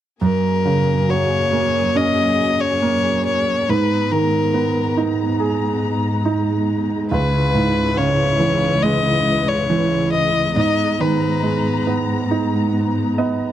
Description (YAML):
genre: pop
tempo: 69 BPM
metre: 4/4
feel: straight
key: G# minor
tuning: A4 = 444 Hz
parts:
  - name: rich violin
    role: melody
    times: 0.2-11.9 s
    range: A#4 to D#5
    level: -20 LUFS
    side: left 4 dB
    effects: none
  - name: clear grand piano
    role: accompaniment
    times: 0.2-13.5 s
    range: C#2 to D#5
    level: -19 LUFS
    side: right 4 dB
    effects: none
  - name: dark studio string section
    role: sustained chords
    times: 0.2-13.5 s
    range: F#2 to A#5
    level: -23 LUFS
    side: left 2 dB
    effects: none
room: light reverb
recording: dry, close 1970s-style studio recording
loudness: -16 LUFS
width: side -11 dB against mid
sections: 0.2-13.5 A section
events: grand piano fill 12.7-13.5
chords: 0.2 F#add9; 3.7 G#madd9; 7.1 C#m7; 10.6 G#madd9